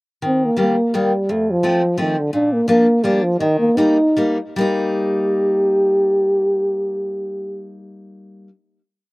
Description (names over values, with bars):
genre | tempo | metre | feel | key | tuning
alpine folk, alpine dance band | 144-173 BPM | 3/4 | swing 55% on 8ths, rubato | Eb major | A4 = 440 Hz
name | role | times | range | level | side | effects
picked steel-string acoustic guitar | accompaniment | 0.2-8.5 s | F2 to Eb4 | -22 LUFS | left 2 dB | none
mellow euphonium | melody | 0.3-7.8 s | D3 to G4 | -16 LUFS | equal | slapback echo
room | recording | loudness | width
little or no reverb | recorded outdoors, with no room sound | -15 LUFS | side -22 dB against mid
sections
0.2-4.6 A section; 4.6-7.0 final chord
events
slowing down 2.3-4.6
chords
0.2 Eb; 1.3 F; 2.3 Bb; 3.4 Eb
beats
| 0.22 0.58 0.93 | 1.29 1.64 1.99 | 2.33 2.68 3.04 | 3.40 3.77 4.16 | 4.57 4.98 5.38 | 5.79 6.19 6.60